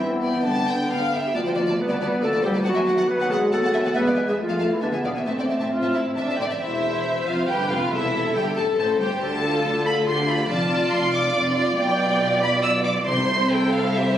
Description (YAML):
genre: quick classical-period movement for symphony orchestra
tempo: 138 BPM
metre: 3/4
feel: rubato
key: unclear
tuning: A4 = 439 Hz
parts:
  - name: warm clarinet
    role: second line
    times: 0.0-6.2 s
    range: A3 to B4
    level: -24 LUFS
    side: equal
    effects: none
  - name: dark French horn section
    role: sustained chords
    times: 0.0-6.4 s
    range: F3 to C4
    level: -27 LUFS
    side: left 1 dB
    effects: none
  - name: rich chamber cello section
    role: bass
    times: 0.0-14.2 s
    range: E2 to B3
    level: -28 LUFS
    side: right 1 dB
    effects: none
  - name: warm chamber double bass section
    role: bass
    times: 0.0-14.2 s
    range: E1 to G2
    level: -30 LUFS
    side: right 1 dB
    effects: none
  - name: rich symphonic violin section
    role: melody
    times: 0.2-14.2 s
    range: D5 to E6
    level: -28 LUFS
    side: equal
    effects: none
  - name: warm chamber violin section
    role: second line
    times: 0.2-14.2 s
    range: E4 to A5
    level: -26 LUFS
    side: left 2 dB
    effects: none
  - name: warm chamber viola section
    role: accompaniment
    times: 0.2-14.2 s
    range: A3 to D5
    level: -27 LUFS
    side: right 1 dB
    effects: none
  - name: timpani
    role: percussion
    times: 7.9-8.5, 13.1-13.7 s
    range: C3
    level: -32 LUFS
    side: equal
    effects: none
room: wet scoring stage reverb, RT60 1.9 s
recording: recorded on a phone in the room, studio reverb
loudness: -19 LUFS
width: side -11 dB against mid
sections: 0.0-6.6 A section; 6.6-14.2 B section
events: none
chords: 0.0 G; 1.3 Bm7b5/D; 2.7 B7/D#; 4.0 E; 4.4 Fmaj7; 4.8 E7; 5.3 Am; 6.6 Cadd11/E; 7.9 Am/E; 9.2 Dm; 10.5 Dm/F; 11.8 G7/B; 13.1 C